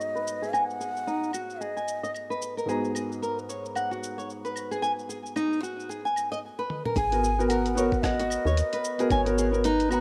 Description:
organic downtempo; 112 BPM; 4/4; swing 59% on 16ths; G# minor; A4 = 440 Hz
breathy bass bansuri; melody; 0.0-2.4, 7.0-10.0 s; B4 to G#5; -33 LUFS; equal; tape echo
felt-muted upright piano; accompaniment; 0.0-10.0 s; G#2 to A#5; -33 LUFS; equal; sidechain pumping
dusty soul sampler-style drum kit; drums; 0.0-10.0 s; claves, hi-hat, rim click, shaker, toms; -40 LUFS; equal; studio reverb
flamenco guitar; arpeggios; 0.2-10.0 s; D#4 to G#5; -32 LUFS; equal; low-pass filter, tape echo
woody FM bass; bass; 7.0-10.0 s; G#1 to D#2; -32 LUFS; equal; sidechain pumping
electronic kick drum; drums; 7.0-9.2 s; -32 LUFS; equal; studio reverb
light reverb, studio ambience; rough home demo mix; -28 LUFS; mono
0.0-7.0 A section; 7.0-10.0 B section
filter sweep on nylon-string guitar 0.0-7.0; drum fill 6.7
0.0 G#m7

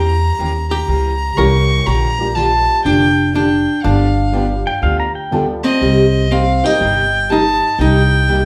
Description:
country; 122 BPM; 4/4; swing 66% on 8ths; A4 = 442 Hz
rich fiddle; melody; 0.0-8.5 s; Eb5 to C#6; -20 LUFS; equal
archtop guitar, miked and amplified; second line; 0.0-8.5 s; C4 to Bb4; -21 LUFS; equal
picked steel-string acoustic guitar; accompaniment; 0.0-8.4 s; C3 to G4; -23 LUFS; equal
upright bass; bass; 0.0-8.5 s; F1 to E2; -19 LUFS; equal
honky-tonk upright piano; accompaniment; 1.4-6.8 s; G3 to A4; -24 LUFS; equal
pedal steel guitar; second line; 4.7-5.5 s; F5 to Bb5; -22 LUFS; equal
moderate large studio reverb, RT60 0.9 s; band playing live in one room; -15 LUFS; mono
0.0-8.5 A section
0.0 Edim7; 1.9 Bb6; 3.8 G7; 5.8 Cm7

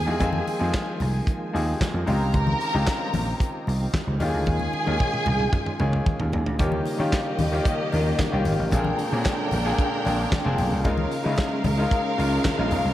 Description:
disco; 113 BPM; 4/4; straight; A4 = 439 Hz
dark studio string section; second line; 0.0-12.9 s; Bb3 to Bb5; -29 LUFS; right 1 dB
clear grand piano; accompaniment; 0.0-12.9 s; Bb2 to Bb4; -28 LUFS; left 3 dB
percussive tonewheel organ; sustained chords; 0.0-12.9 s; Db3 to G4; -33 LUFS; right 1 dB; overdrive, chorus vibrato, slow rotary speaker
vintage slap bass; bass; 0.0-12.9 s; F1 to Eb3; -25 LUFS; equal
warm soul drum kit; drums; 0.2-12.8 s; handclaps, hi-hat, kick drum, snare drum, toms; -27 LUFS; equal; gated reverb
congas; percussion; 0.2-12.8 s; -32 LUFS; left 3 dB
light reverb, studio reverb; -21 LUFS; side -13 dB against mid
0.0-6.6 A section; 6.6-12.9 B section
drum fill 4.5-6.6
0.0 Fm7; 2.1 Dbmaj9#11; 4.2 Eb9sus4; 6.6 Eb7; 8.7 Bb7; 10.9 Db6

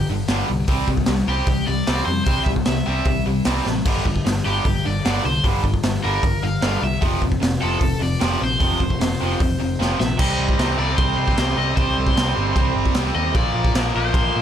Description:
punk rock; 152 BPM; 4/4; straight; A4 = 441 Hz
cranked stack guitar; melody; 0.0-14.4 s; G4 to F5; -26 LUFS; left 2 dB; overdrive, tape echo
overdriven electric guitar; riff; 0.0-14.4 s; F2 to C4; -25 LUFS; right 13 dB
tight distorted guitar; riff; 0.0-14.4 s; F2 to C4; -25 LUFS; left 12 dB; distortion
picked electric bass; bass; 0.0-14.4 s; F1 to C3; -24 LUFS; equal
raw garage drum kit; drums; 0.3-14.2 s; crash cymbal, hi-hat, kick drum, snare drum; -22 LUFS; equal
little or no reverb; -18 LUFS; side -9 dB against mid
0.0-10.2 A section; 10.2-14.4 B section
drum fill 3.7, 9.8-10.2
0.0 G5; 0.7 C5; 3.9 G5; 7.0 F5; 10.2 Cm; 13.4 Bb

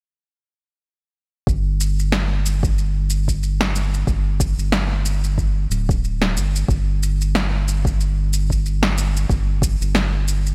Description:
sunset chillout; 92 BPM; 4/4; swing 57% on 16ths; A4 = 439 Hz
round analog bass; bass; 1.5-10.5 s; D1 to G1; -22 LUFS; equal
electronic kick drum; drums; 1.5-9.8 s; -24 LUFS; equal; overdrive
electronic shaker and snare drum; drums; 1.5-10.5 s; -26 LUFS; equal; overdrive, gated reverb
little or no reverb; bright 1980s-style digital production; -20 LUFS; mono
1.5-10.5 A section

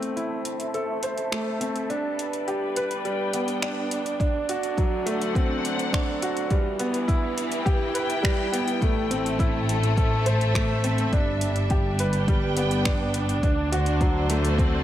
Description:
piano and strings electronica; 104 BPM; 4/4; straight; A dorian; A4 = 440 Hz
dark studio string section; sustained chords; 0.0-14.8 s; D3 to G5; -30 LUFS; left 1 dB; sidechain pumping, low-pass filter
warm upright piano; riff; 0.0-14.8 s; F#3 to C5; -27 LUFS; right 1 dB; digital delay
dark studio double bass section; bass; 0.0-14.8 s; G1 to E2; -28 LUFS; equal; sidechain pumping, high-pass filter
deep house drum kit; drums; 0.0-14.7 s; finger snaps, hi-hat; -33 LUFS; equal; overdrive
electronic kick drum; drums; 4.2-14.7 s; -24 LUFS; equal; overdrive
light reverb, small room ambience; -22 LUFS; side -12 dB against mid
0.0-8.8 A section; 8.8-14.8 B section
build-up 0.0-8.8; filter sweep on string section 0.0-8.8; drop 8.8-14.8
0.0 Am; 1.9 G; 4.2 D7; 6.5 Em; 8.8 Am; 11.1 G; 13.4 D7

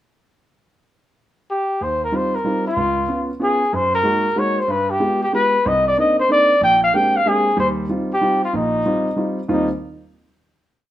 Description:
jazz; 188 BPM; 3/4; swing 64% on 8ths; Eb major; A4 = 438 Hz
breathy trumpet; melody; 1.5-9.7 s; Eb4 to G5; -17 LUFS; left 1 dB
warm grand piano; accompaniment; 1.8-9.7 s; Bb1 to G4; -22 LUFS; right 1 dB
moderate club reverb, RT60 0.8 s; -16 LUFS; side -13 dB against mid
0.9-1.8 pickup bar; 1.8-9.5 A section; 9.5-10.4 final chord
0.9 N.C.; 1.8 Eb69; 2.8 Db7; 3.7 Gb69; 4.7 G7b9; 5.6 Cm9; 6.6 Bb13; 7.6 Eb69

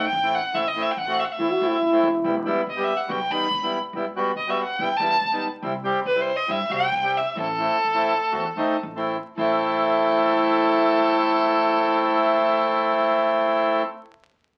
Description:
klezmer; 107-142 BPM; 4/4; straight; A dorian sharp4; A4 = 444 Hz
clear violin; melody; 0.0-13.8 s; A4 to B5; -26 LUFS; equal
accordion; accompaniment; 0.0-13.8 s; G3 to G4; -25 LUFS; equal
upright bass; bass; 0.0-13.8 s; E1 to C3; -42 LUFS; equal
trombone with bucket mute; second line; 1.4-2.5, 9.4-13.8 s; E4 to F#4; -28 LUFS; equal
wet studio reverb, RT60 0.6 s; very old 78 rpm record, vinyl crackle; -22 LUFS; mono
0.0-9.4 A section; 9.4-13.8 B section
slowing down 5.6-9.4
0.0 Am; 2.2 Em; 5.6 C; 7.4 Am

